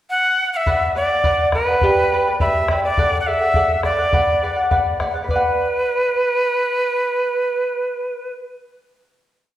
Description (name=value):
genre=andean folk, Andean ensemble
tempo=104 BPM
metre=2/4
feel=straight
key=B minor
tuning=A4 = 440 Hz
part: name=breathy bright quena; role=melody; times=0.1-8.3 s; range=B4 to F#5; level=-18 LUFS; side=right 1 dB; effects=none
part: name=charango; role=accompaniment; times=0.7-9.1 s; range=G4 to B5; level=-20 LUFS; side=left 1 dB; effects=none
part: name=bombo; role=percussion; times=0.7-5.5 s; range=none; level=-23 LUFS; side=left 1 dB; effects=none
room=wet recital hall reverb, RT60 1.4 s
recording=heard from further back in the room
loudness=-16 LUFS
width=side -12 dB against mid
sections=0.0-0.7 pickup bar; 0.7-5.3 A section; 5.3-7.6 final chord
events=none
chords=0.0 N.C.; 0.7 Bm; 1.8 G; 3.0 D; 4.1 Bm